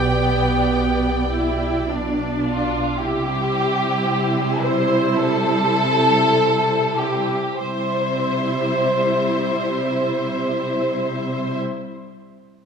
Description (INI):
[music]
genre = cinematic, emotional film score for orchestra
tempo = free time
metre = none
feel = none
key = C major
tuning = A4 = 441 Hz
[part]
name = rich studio violin section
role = melody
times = 0.0-11.6 s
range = C5 to E5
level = -32 LUFS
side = left 3 dB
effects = none
[part]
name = warm duduk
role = melody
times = 0.0-1.9 s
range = G4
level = -27 LUFS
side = left 1 dB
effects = none
[part]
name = rich studio violin section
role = second line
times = 0.0-11.6 s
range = F4 to G5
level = -21 LUFS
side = left 1 dB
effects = none
[part]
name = warm studio viola section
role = accompaniment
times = 0.0-11.6 s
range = G3 to E4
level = -24 LUFS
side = right 1 dB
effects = none
[part]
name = clear studio double bass section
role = bass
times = 0.0-2.8 s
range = B1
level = -27 LUFS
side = right 2 dB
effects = none
[part]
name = warm studio cello section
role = bass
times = 0.0-11.6 s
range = B2 to C3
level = -26 LUFS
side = right 3 dB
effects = none
[sound]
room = wet scoring stage reverb, RT60 2.0 s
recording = minimal, uncompressed stereo recording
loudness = -18 LUFS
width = side -6 dB against mid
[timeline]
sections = 0.0-3.0 A section; 3.0-7.6 B section; 7.6-12.5 C section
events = slowing down 0.0-7.6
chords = 0.0 G/B; 3.0 C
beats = free time